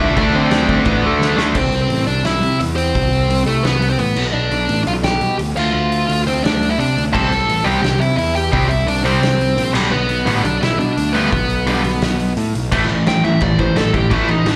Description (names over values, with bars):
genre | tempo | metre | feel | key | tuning
punk rock | 172 BPM | 4/4 | straight | unclear | A4 = 440 Hz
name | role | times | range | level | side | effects
dark smooth lead guitar | melody | 0.0-14.6 s | A3 to A5 | -21 LUFS | equal | overdrive
biting overdriven guitar | riff | 0.0-1.6, 7.1-14.6 s | G2 to D4 | -25 LUFS | equal | none
tight distorted guitar | riff | 0.0-1.6, 7.1-14.6 s | G2 to D4 | -21 LUFS | equal | distortion, slapback echo
fuzz picked electric bass | bass | 0.0-14.6 s | A1 to D3 | -21 LUFS | equal | overdrive
loose indie drum kit | drums | 0.2-14.5 s | crash cymbal, hi-hat, kick drum, snare drum | -25 LUFS | equal | none
room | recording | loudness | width
little or no reverb | live gig heard through the venue's PA, club reverb | -16 LUFS | mono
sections
0.0-1.6 A section; 1.6-12.7 B section; 12.7-14.6 C section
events
drum fill 1.2-1.6; half time 1.6-12.7; lead electric guitar solo 12.7-14.6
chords
0.0 D5; 1.6 C; 4.2 G; 5.6 Dm; 7.1 C; 9.8 G; 12.7 A5